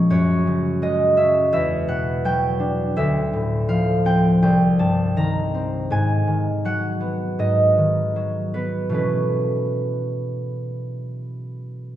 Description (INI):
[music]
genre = classical, solo harp piece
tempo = 67-85 BPM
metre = 4/4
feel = rubato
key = unclear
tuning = A4 = 441 Hz
[part]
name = concert harp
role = solo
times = 0.0-12.0 s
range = C2 to C#6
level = -18 LUFS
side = equal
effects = none
[sound]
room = wet scoring stage reverb, RT60 1.6 s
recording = dark, warm production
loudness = -18 LUFS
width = side -12 dB against mid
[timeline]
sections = 0.0-12.0 A section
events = none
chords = 0.1 F#sus2; 1.5 Em9; 3.0 Dm9; 4.4 Cm9; 5.9 G#m7; 8.9 B9sus4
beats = | 0.10 0.81 1.52 2.23 | 2.96 3.69 4.42 5.16 | 5.91 6.65 7.39 8.15 | 8.95 9.77 10.57 11.37